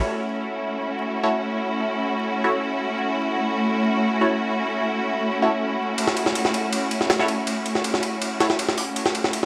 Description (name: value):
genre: drum and bass, jungle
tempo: 161 BPM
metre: 4/4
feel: straight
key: F# minor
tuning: A4 = 440 Hz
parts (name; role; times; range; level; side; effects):
- bright studio string section; sustained chords; 0.0-9.5 s; A3 to F#4; -26 LUFS; equal; none
- band-passed chord stab; stabs; 0.0-8.5 s; E4 to C#5; -29 LUFS; equal; phaser, cassette tape, dub echo
- jungle sampler-style drum kit; drums; 6.0-9.5 s; hi-hat, ride cymbal, snare drum; -26 LUFS; equal; none
room: wet lush hall reverb, RT60 1.9 s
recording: vinyl crackle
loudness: -23 LUFS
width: mono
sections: 0.0-9.5 A section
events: none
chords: 0.0 F#m7